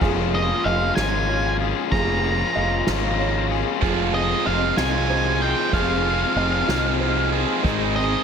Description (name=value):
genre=post-rock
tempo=63 BPM (dotted quarters)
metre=6/8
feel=straight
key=unclear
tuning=A4 = 440 Hz
part: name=felt-muted upright piano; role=arpeggios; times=0.0-8.2 s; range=Ab4 to Eb5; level=-33 LUFS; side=right 5 dB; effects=tape echo
part: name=twangy electric guitar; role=arpeggios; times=0.0-8.2 s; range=F3 to Bb4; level=-30 LUFS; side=equal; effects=ensemble chorus, tape echo
part: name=distorted electric guitar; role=riff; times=0.0-8.2 s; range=Ab2 to F4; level=-26 LUFS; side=left 11 dB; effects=distortion
part: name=growling fingered electric bass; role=bass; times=0.0-8.1 s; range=F1 to C2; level=-25 LUFS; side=equal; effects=overdrive
part: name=soft-mallet drum kit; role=drums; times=0.0-8.1 s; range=crash cymbal, kick drum, ride cymbal, snare drum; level=-27 LUFS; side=equal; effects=none
part: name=octave-fuzz lead guitar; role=melody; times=0.3-8.2 s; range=Eb5 to Bb5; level=-25 LUFS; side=right 1 dB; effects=distortion, tape echo
part: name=tight distorted guitar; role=riff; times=3.8-8.2 s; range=F3 to Ab4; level=-25 LUFS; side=right 15 dB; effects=distortion
room=light reverb, studio ambience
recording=none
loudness=-19 LUFS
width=side -7 dB against mid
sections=0.0-8.2 A section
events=none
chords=0.0 Db6/F; 3.8 Fm7; 7.6 Ab